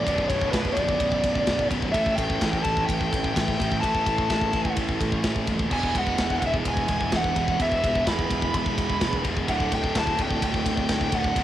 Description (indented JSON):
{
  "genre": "heavy metal",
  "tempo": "127 BPM",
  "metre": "4/4",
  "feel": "straight",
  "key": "unclear",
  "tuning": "A4 = 440 Hz",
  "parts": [
    { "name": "bluesy overdriven lead guitar", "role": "melody", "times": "0.0-11.4 s", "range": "B4 to B5", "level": "-27 LUFS", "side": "equal", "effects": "distortion, cassette tape, tape echo" },
    { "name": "heavy high-gain guitar", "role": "riff", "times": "0.0-11.4 s", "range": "B1 to A3", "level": "-33 LUFS", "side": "left 8 dB", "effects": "distortion, cassette tape" },
    { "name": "overdriven electric guitar", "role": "riff", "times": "0.0-11.4 s", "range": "B1 to A4", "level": "-32 LUFS", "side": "left 1 dB", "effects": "cassette tape" },
    { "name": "tight distorted guitar", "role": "riff", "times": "0.0-11.4 s", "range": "B1 to A3", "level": "-30 LUFS", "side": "right 6 dB", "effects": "distortion, cassette tape" },
    { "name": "fuzz picked electric bass", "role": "bass", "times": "0.0-11.4 s", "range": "B0 to A1", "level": "-30 LUFS", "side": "equal", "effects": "overdrive" },
    { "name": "tight metal drum kit", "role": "drums", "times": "0.1-11.4 s", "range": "crash cymbal, kick drum, ride cymbal, snare drum", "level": "-27 LUFS", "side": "equal", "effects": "cassette tape" }
  ],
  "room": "light reverb",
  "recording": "home recording on cassette",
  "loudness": "-22 LUFS",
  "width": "side -12 dB against mid",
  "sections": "0.0-11.4 A section",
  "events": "none",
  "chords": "0.1 Bm; 1.9 A; 5.7 E; 9.5 D"
}